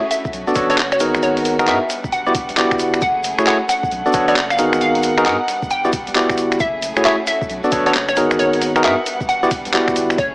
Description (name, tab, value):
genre	UK garage, two-step garage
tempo	134 BPM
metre	4/4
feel	swing 63% on 16ths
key	unclear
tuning	A4 = 440 Hz
part	hollow square pluck	melody	0.0-10.3 s	C#5 to G5	-20 LUFS	equal	chorus
part	warm studio violin section	sustained chords	0.0-10.3 s	G3 to F#5	-26 LUFS	equal	vintage 12-bit sampler grit, sidechain pumping
part	boom bap sampler-style drum kit	drums	0.1-10.3 s	finger snaps, handclaps, hi-hat	-21 LUFS	equal	none
part	egg shaker	percussion	0.1-10.3 s	none	-34 LUFS	left 1 dB	none
part	soft dub sub bass	bass	0.3-10.3 s	E1 to G#2	-33 LUFS	equal	none
part	electronic kick drum	drums	0.3-10.3 s	none	-28 LUFS	equal	none
part	barky tine electric piano	stabs	0.5-10.2 s	A3 to D5	-17 LUFS	equal	none
room	moderate digital room reverb, RT60 1.3 s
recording	small speaker sound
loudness	-14 LUFS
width	side -26 dB against mid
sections	0.0-10.3 A section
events	none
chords	0.1 Bm9; 1.0 G#m9; 1.9 Em9; 3.0 F#m9; 3.7 Bm9; 4.6 G#m9; 5.5 Em9; 6.6 F#m9; 7.3 Bm9; 8.2 G#m9; 9.1 Em9